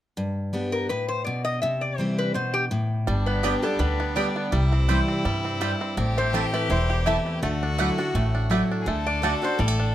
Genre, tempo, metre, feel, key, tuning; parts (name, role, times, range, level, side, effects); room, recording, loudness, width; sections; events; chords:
bluegrass; 166 BPM; 4/4; swing 54% on 8ths; G major; A4 = 440 Hz
picked steel-string acoustic guitar; accompaniment; 0.2-9.9 s; E2 to G4; -26 LUFS; left 1 dB
lap resonator guitar; melody; 0.7-9.9 s; G4 to E5; -27 LUFS; left 2 dB
bluegrass banjo; melody; 3.1-9.9 s; G3 to G4; -30 LUFS; right 3 dB
clear fiddle; second line; 3.1-9.9 s; D4 to A4; -31 LUFS; left 2 dB
upright bass; bass; 3.1-9.9 s; E1 to G2; -26 LUFS; equal
mandolin; stabs; 3.4-9.3 s; A3 to A5; -29 LUFS; right 5 dB
light reverb; close, detailed microphones; -22 LUFS; side -12 dB against mid
0.2-3.1 A section; 3.1-9.9 B section
0.2 G; 1.6 C; 3.1 G; 4.5 C; 6.0 Am; 7.4 Dadd9; 8.9 D